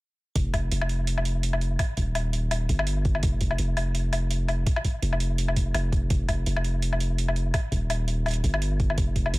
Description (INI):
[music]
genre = half-time drum and bass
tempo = 167 BPM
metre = 4/4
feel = swing 56% on 16ths, half-time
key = unclear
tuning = A4 = 441 Hz
[part]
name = long sustained 808-style bass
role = bass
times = 0.4-9.4 s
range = Eb1 to G1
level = -25 LUFS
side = equal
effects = none
[part]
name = electronic hi-hat and woodblock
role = drums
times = 0.4-9.4 s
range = none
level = -31 LUFS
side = left 2 dB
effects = none
[part]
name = electronic kick drum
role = drums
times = 0.4-9.2 s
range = none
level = -26 LUFS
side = equal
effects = none
[sound]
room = little or no reverb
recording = none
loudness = -23 LUFS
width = side -21 dB against mid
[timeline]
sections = 0.4-9.4 A section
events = none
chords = none